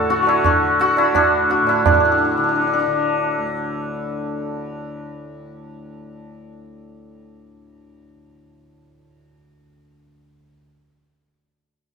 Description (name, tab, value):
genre	indian classical, Hindustani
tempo	172 BPM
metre	3/4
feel	straight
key	D raga hamsadhwani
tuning	A4 = 440 Hz
part	santur	melody	0.0-6.5 s	D4 to A4	-18 LUFS	left 2 dB	none
part	tanpura	drone	0.0-10.5 s	D2 to D3	-29 LUFS	equal	none
part	tabla	percussion	0.1-2.0 s	none	-20 LUFS	right 7 dB	none
room	moderate studio reverb, RT60 0.5 s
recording	minimal, uncompressed stereo recording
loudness	-16 LUFS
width	side -5 dB against mid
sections	0.0-1.9 A section; 1.9-3.9 B section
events	none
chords	none